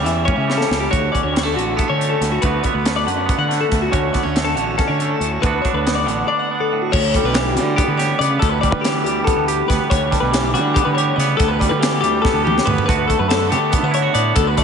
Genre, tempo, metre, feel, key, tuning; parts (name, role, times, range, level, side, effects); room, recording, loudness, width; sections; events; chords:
math rock and midwest emo; 281 BPM (eighths); 7/8; straight; A4 = 440 Hz
twangy electric guitar; accompaniment; 0.0-14.6 s; D2 to G4; -21 LUFS; right 8 dB; slapback echo
twelve-string electric guitar; arpeggios; 0.0-14.6 s; F#4 to F#5; -20 LUFS; left 6 dB
fuzz fingered electric bass; bass; 0.0-14.6 s; A1 to D3; -22 LUFS; equal; overdrive
crisp fusion drum kit; drums; 0.1-14.6 s; crash cymbal, hi-hat, kick drum, snare drum, toms; -21 LUFS; equal
wet concert hall reverb, RT60 2.2 s; big arena sound, nothing above 10.9 kHz; -15 LUFS; side -6 dB against mid
0.0-6.9 A section; 6.9-14.6 B section
drum fill 0.3-0.9, 12.2-12.9
0.0 A7; 0.9 Dmaj7; 2.4 Bm7/D; 3.9 Dmaj7; 6.9 Em7; 12.9 N.C.